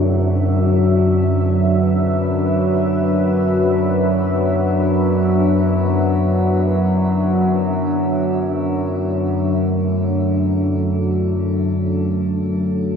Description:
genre	dark ambient drone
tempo	free time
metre	none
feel	none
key	unclear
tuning	A4 = 440 Hz
part	deep dark ambient pad	sustained chords	0.0-13.0 s	F#3 to E5	-19 LUFS	left 1 dB	chorus, built-in reverb, shimmer reverb
part	analog drone	drone	0.0-13.0 s	F#2 to F#3	-18 LUFS	equal	chorus
room	wet cathedral reverb, RT60 5.2 s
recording	dark, warm production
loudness	-15 LUFS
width	side -7 dB against mid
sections	0.0-13.0 A section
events	none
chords	0.0 D69/F#

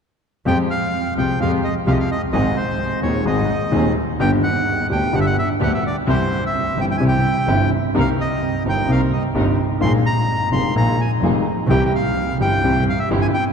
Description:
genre	tango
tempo	128 BPM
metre	4/4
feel	rubato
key	F minor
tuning	A4 = 440 Hz
part	bandoneon	melody	0.5-13.4 s	C5 to C6	-23 LUFS	equal	none
part	warm grand piano	accompaniment	0.5-13.3 s	Eb1 to Ab4	-19 LUFS	left 2 dB	none
part	muted studio string section	stabs	0.5-13.3 s	Ab3 to Bb4	-28 LUFS	right 3 dB	none
part	clear double bass	bass	0.5-13.3 s	F1 to F2	-22 LUFS	right 2 dB	none
room	wet cathedral reverb, RT60 6.0 s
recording	recorded in a church or concert hall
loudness	-16 LUFS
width	side -6 dB against mid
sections	0.5-13.5 A section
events	none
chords	0.5 Fmadd9; 2.3 Ab; 4.2 G; 6.1 C; 7.9 Cm7; 9.8 Bb7sus4; 11.7 C

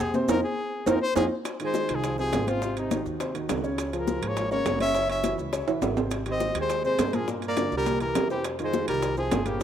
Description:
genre	Afro-Cuban jazz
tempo	206 BPM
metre	4/4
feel	straight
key	F minor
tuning	A4 = 440 Hz
part	clear trumpet	melody	0.0-9.6 s	Eb4 to E5	-29 LUFS	left 3 dB	none
part	warm baby grand piano	accompaniment	0.0-9.6 s	Bb2 to Db5	-31 LUFS	right 1 dB	none
part	upright bass	bass	0.0-9.6 s	Gb1 to G2	-34 LUFS	equal	none
part	agogo bells and timbales	percussion	0.0-9.6 s	none	-31 LUFS	right 7 dB	none
part	congas	percussion	0.0-9.6 s	none	-33 LUFS	left 2 dB	none
part	maracas	percussion	0.0-9.6 s	none	-44 LUFS	right 10 dB	none
part	cowbell and bongos	percussion	0.1-9.6 s	none	-33 LUFS	left 5 dB	none
part	warm tenor saxophone	second line	1.6-9.6 s	C3 to Db4	-33 LUFS	right 6 dB	none
room	light reverb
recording	rough home demo mix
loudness	-24 LUFS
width	side -9 dB against mid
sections	0.0-1.5 A section; 1.5-9.6 B section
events	trumpet solo 0.0-1.5; drum fill 0.3-1.5, 5.7-6.1; band accent 0.3-1.5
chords	0.0 Fm7; 2.6 Ab7; 3.8 Db6; 4.9 Gb7sus2; 6.1 Abmaj7; 7.3 Gm7; 7.9 C7; 8.4 Fm9

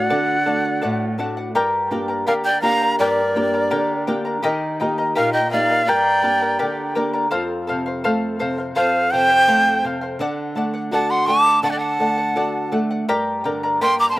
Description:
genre	andean folk, Andean ensemble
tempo	83 BPM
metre	2/4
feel	straight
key	G minor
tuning	A4 = 440 Hz
part	breathy bright large quena	melody	0.0-14.2 s	D5 to D6	-18 LUFS	equal	slapback echo
part	breathy pan flute	second line	0.0-14.2 s	Bb4 to Bb5	-24 LUFS	right 1 dB	slapback echo
part	charango	accompaniment	0.0-14.2 s	G4 to Bb5	-23 LUFS	left 1 dB	none
part	nylon-string guitar	accompaniment	0.0-14.2 s	F2 to G4	-24 LUFS	right 1 dB	none
room	little or no reverb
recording	recorded outdoors, with no room sound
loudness	-17 LUFS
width	side -17 dB against mid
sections	0.0-7.3 A section; 7.3-14.2 A section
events	none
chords	0.0 D; 1.5 Gm; 4.4 Eb; 5.9 Gm; 7.3 F; 10.2 D; 13.1 Gm

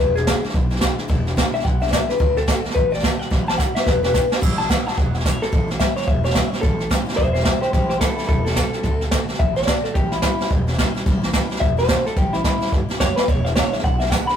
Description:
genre	rockabilly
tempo	217 BPM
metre	4/4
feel	swing 61% on 8ths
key	A mixolydian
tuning	A4 = 440 Hz
part	electric guitar through a small old amp	melody	0.0-14.4 s	E4 to B5	-22 LUFS	left 2 dB	none
part	picked steel-string acoustic guitar	accompaniment	0.0-14.4 s	E2 to F#4	-30 LUFS	left 2 dB	none
part	upright bass	bass	0.0-14.3 s	E1 to D2	-25 LUFS	equal	none
part	jazz brush drum kit	drums	0.0-14.3 s	crash cymbal, hi-hat, kick drum, snare drum	-19 LUFS	right 1 dB	none
room	moderate studio reverb, RT60 0.5 s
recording	rough rehearsal-room recording, warm saturation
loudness	-17 LUFS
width	side -9 dB against mid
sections	0.0-4.4 A section; 4.4-14.4 B section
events	drum fill 3.3-4.4, 13.1; clean electric guitar solo 4.4-14.4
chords	0.0 E7; 2.2 D7; 3.3 A7; 3.9 E7; 4.4 A7; 8.8 D7; 10.0 A7; 13.3 E7

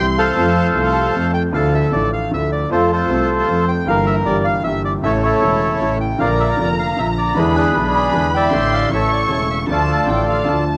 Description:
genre	tango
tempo	154 BPM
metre	3/4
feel	rubato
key	D minor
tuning	A4 = 437 Hz
part	bandoneon	melody	0.0-10.6 s	D4 to G5	-20 LUFS	equal	cassette tape
part	warm studio violin section	second line	0.0-1.3, 6.2-10.8 s	F5 to C#6	-26 LUFS	equal	cassette tape
part	bright upright piano	accompaniment	0.0-10.8 s	E1 to A4	-23 LUFS	equal	cassette tape
part	rich double bass	bass	0.0-10.8 s	E1 to F2	-24 LUFS	equal	none
room	moderate spring reverb, RT60 1.2 s, small room ambience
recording	home recording on cassette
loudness	-17 LUFS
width	mono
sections	0.0-1.5 A section; 1.5-10.8 B section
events	none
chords	0.4 F; 1.5 Dmadd9; 2.7 F; 3.9 Edim/G; 5.0 A; 6.2 Bb; 7.4 E7; 8.5 Asus4; 8.9 A; 9.7 Dm

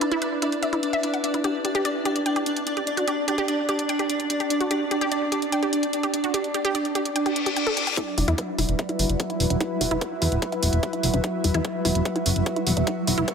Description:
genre	psychedelic trance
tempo	147 BPM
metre	4/4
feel	straight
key	E minor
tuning	A4 = 440 Hz
part	pulsing gated texture	sustained chords	0.0-13.3 s	F#3 to D5	-26 LUFS	equal	chorus, built-in reverb, sidechain pumping
part	wide unison pluck	riff	0.0-13.3 s	D4 to G5	-28 LUFS	moving between left 4 dB and right 5 dB	auto-pan, sidechain pumping, digital delay
part	electronic hi-hat	drums	0.0-13.3 s	none	-29 LUFS	right 1 dB	overdrive
part	airy breathy pad	texture	0.0-13.3 s	D4 to E5	-30 LUFS	equal	chorus, sidechain pumping
part	reverse cymbal	sound effects	7.3-8.0 s	none	-27 LUFS	left 6 dB	none
part	electronic kick drum	drums	8.0-13.3 s	none	-28 LUFS	equal	overdrive, high-pass filter on kick
part	fat analog bass	bass	8.2-13.2 s	D1 to E2	-24 LUFS	equal	none
room	moderate lush hall reverb, RT60 1.6 s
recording	none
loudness	-22 LUFS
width	side -6 dB against mid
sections	0.0-8.0 A section; 8.0-13.3 B section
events	reverse cymbal 7.3-8.0; build-up 8.0-13.3; filter sweep on synth texture 8.0-13.3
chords	0.0 E5; 1.4 G5; 8.0 E5

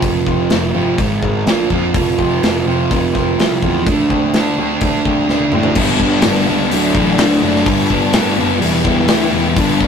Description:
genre	quiet-loud alternative rock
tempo	126 BPM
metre	4/4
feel	straight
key	G major from 5.8 s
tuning	A4 = 440 Hz
part	electric guitar through a small old amp	arpeggios	0.0-5.8 s	Ab2 to F#4	-24 LUFS	left 4 dB	none
part	sludgy distorted guitar	riff	0.0-9.9 s	F2 to E4	-16 LUFS	right 4 dB	overdrive
part	fuzz picked electric bass	bass	0.0-9.9 s	E1 to A2	-21 LUFS	left 1 dB	overdrive
part	big rock drum kit	drums	0.0-9.9 s	crash cymbal, hi-hat, kick drum, snare drum, toms	-18 LUFS	left 1 dB	none
part	dark studio string section	sustained chords	5.8-9.9 s	E4 to A5	-25 LUFS	left 2 dB	none
part	thick fuzz guitar	riff	5.8-9.9 s	G2 to E4	-17 LUFS	left 7 dB	distortion
room	moderate studio reverb, RT60 0.5 s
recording	rough rehearsal-room recording, tube saturation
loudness	-12 LUFS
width	side -7 dB against mid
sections	0.0-5.8 A section; 5.8-9.9 B section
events	drum fill 5.3-5.8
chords	0.0 F; 1.0 Ab5; 1.5 Bb5; 1.9 F; 3.9 D7; 5.8 Gadd9; 6.7 Dadd9; 7.7 Gadd9; 8.6 Em

